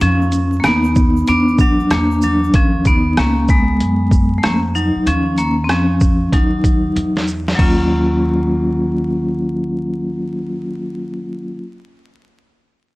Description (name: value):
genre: hip hop, jazz-hop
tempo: 95 BPM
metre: 4/4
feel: swing 64% on 16ths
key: Eb minor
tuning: A4 = 439 Hz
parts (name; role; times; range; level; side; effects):
- vibraphone with hard mallets; accompaniment; 0.0-11.6 s; E#3 to F4; -16 LUFS; equal; none
- upright bass; bass; 0.0-11.6 s; Db2 to Gb2; -21 LUFS; equal; none
- boom bap sampler-style drum kit; drums; 0.0-7.8 s; crash cymbal, hi-hat, kick drum, rim click, shaker, snare drum; -17 LUFS; equal; none
- tube shaker and congas; percussion; 0.0-2.5 s; none; -34 LUFS; right 6 dB; none
room: light reverb, small room ambience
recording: vinyl crackle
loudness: -13 LUFS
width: side -20 dB against mid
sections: 0.0-7.6 A section; 7.6-10.1 B section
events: vibraphone solo 0.0-7.6; drum fill 7.0-7.6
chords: 0.0 Badd9(#11); 1.3 Esus2; 2.5 Ebm9